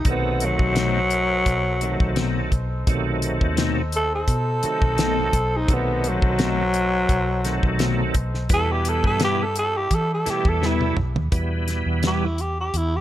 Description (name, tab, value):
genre	straight-eighth soul blues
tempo	85 BPM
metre	4/4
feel	swing 53% on 16ths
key	E harmonic minor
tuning	A4 = 440 Hz
part	growling tenor saxophone	melody	0.0-13.0 s	F#3 to A4	-23 LUFS	equal	slapback echo
part	mellow horn section	sustained chords	0.0-11.3 s	G3 to C5	-35 LUFS	left 1 dB	none
part	damped 70s drum kit	drums	0.0-12.9 s	hi-hat, kick drum, snare drum, toms	-22 LUFS	equal	none
part	bright tonewheel organ	accompaniment	0.1-12.3 s	B2 to B3	-28 LUFS	right 4 dB	overdrive, chorus vibrato, slow rotary speaker
part	vintage muted fingered electric bass	bass	0.1-13.0 s	B1 to E3	-25 LUFS	equal	none
part	clean electric guitar	stabs	0.8-12.3 s	B2 to E4	-29 LUFS	left 6 dB	ensemble chorus
room	little or no reverb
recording	none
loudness	-19 LUFS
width	side -13 dB against mid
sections	0.0-11.3 A section; 11.3-13.0 B section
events	tenor saxophone solo 0.0-11.3; drum fill 10.6-11.3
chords	0.1 B7b9; 8.5 Em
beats	| 0.05 0.76 1.46 2.16 | 2.87 3.57 4.28 4.98 | 5.68 6.39 7.09 7.79 | 8.50 9.20 9.91 10.61 | 11.32 12.02 12.73